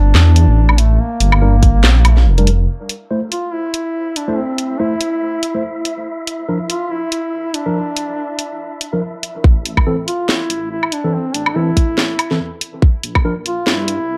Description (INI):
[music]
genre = deep dubstep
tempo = 142 BPM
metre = 4/4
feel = swing 56% on 16ths, half-time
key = A phrygian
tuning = A4 = 441 Hz
[part]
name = warm duduk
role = melody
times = 0.0-14.2 s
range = A3 to F4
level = -24 LUFS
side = equal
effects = low-pass filter, dub echo
[part]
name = dark detuned saw bass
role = bass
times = 0.0-2.7, 9.4-14.2 s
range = F1 to G2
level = -15 LUFS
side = equal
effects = high-pass filter
[part]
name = garage drum kit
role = drums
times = 0.1-14.0 s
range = handclaps, hi-hat, snare drum, woodblock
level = -20 LUFS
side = equal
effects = none
[part]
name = mellow tine electric piano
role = stabs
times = 1.4-13.3 s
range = E3 to C5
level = -24 LUFS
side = equal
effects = lush chorus, dub echo
[part]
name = electronic kick drum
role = drums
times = 1.6-1.7, 9.4-13.2 s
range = none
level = -14 LUFS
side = equal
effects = none
[part]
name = wind-like tuned noise texture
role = texture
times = 4.2-9.5 s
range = E4 to E5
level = -31 LUFS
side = equal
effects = built-in reverb
[sound]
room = light reverb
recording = dark, warm production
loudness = -16 LUFS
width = mono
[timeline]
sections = 0.0-2.7 A section; 2.7-9.4 B section; 9.4-14.2 C section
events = drop 0.0-2.7; build-up 9.4-14.2; filter sweep 9.4-14.2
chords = 0.0 Gm; 2.7 N.C.; 9.4 A5; 12.8 N.C.